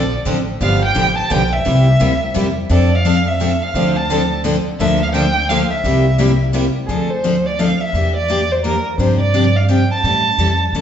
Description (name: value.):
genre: acoustic string swing (jazz manouche).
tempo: 172 BPM.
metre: 3/4.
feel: swing 60% on 8ths.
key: D minor from 6.9 s.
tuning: A4 = 442 Hz.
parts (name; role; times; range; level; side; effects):
dark violin; melody; 0.0-10.8 s; Ab4 to A5; -19 LUFS; right 1 dB; none.
picked steel-string acoustic guitar; accompaniment; 0.0-10.8 s; C3 to A4; -18 LUFS; left 2 dB; none.
picked steel-string acoustic guitar; accompaniment; 0.0-6.7 s; C3 to A4; -23 LUFS; right 4 dB; none.
upright bass; bass; 0.0-10.8 s; G1 to A2; -18 LUFS; equal; none.
room: wet large studio reverb, RT60 1.4 s.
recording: band playing live in one room, nothing above 7.8 kHz.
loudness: -13 LUFS.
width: side -9 dB against mid.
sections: 0.0-6.9 A section; 6.9-10.8 B section.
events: none.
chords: 0.0 Dm7; 0.6 G7; 1.7 C7; 2.7 F6; 3.7 Dm7; 4.8 Bbmaj7/D; 5.8 C7; 6.9 Dm7; 7.9 Em7b5; 9.0 G7sus4; 10.0 A7.